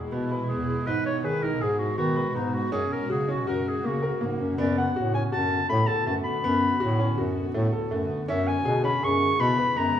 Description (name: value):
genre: contemporary instrumental, chamber music in an uneven meter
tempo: 162 BPM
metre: 5/4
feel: straight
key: unclear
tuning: A4 = 442 Hz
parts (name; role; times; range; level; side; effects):
- warm clarinet; melody; 0.0-10.0 s; D#4 to C#6; -27 LUFS; left 1 dB; none
- granular cloud pad; sustained chords; 0.0-10.0 s; B2 to F#4; -33 LUFS; equal; built-in reverb
- warm grand piano; arpeggios; 0.0-10.0 s; A3 to B4; -29 LUFS; equal; none
- breathy bass clarinet; bass; 0.0-9.9 s; E2 to D#3; -28 LUFS; equal; none
room: moderate recital hall reverb, RT60 1.5 s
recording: minimal, uncompressed stereo recording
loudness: -23 LUFS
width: side -10 dB against mid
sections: 0.0-4.6 A section; 4.6-10.0 B section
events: none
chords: 0.0 E; 0.9 G#m7; 2.7 F#; 4.6 D6; 8.3 E6